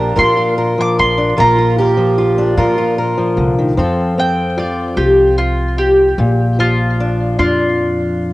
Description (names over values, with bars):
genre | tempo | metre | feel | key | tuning
acoustic folk duo or small band | 50 BPM (dotted quarters) | 6/8 | straight | Bb major | A4 = 440 Hz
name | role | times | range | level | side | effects
mandolin | melody | 0.0-8.3 s | F4 to D6 | -15 LUFS | equal | cassette tape, tape echo
fingerpicked steel-string acoustic guitar | accompaniment | 0.0-8.3 s | Bb2 to Bb4 | -16 LUFS | left 1 dB | none
fingerpicked twelve-string acoustic guitar | arpeggios | 0.0-3.4 s | F4 to G4 | -18 LUFS | right 3 dB | none
upright bass | bass | 0.0-8.3 s | Bb1 to Bb2 | -19 LUFS | equal | none
room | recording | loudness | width
light reverb, small room ambience | home recording on cassette | -12 LUFS | side -18 dB against mid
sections
0.0-3.8 A section; 3.8-8.3 B section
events
mandolin solo 3.8-8.3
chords
0.0 Bbadd9; 3.8 F; 6.2 Bb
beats
0.18 | 1.38 2.58 | 3.78 4.98 | 6.19 7.39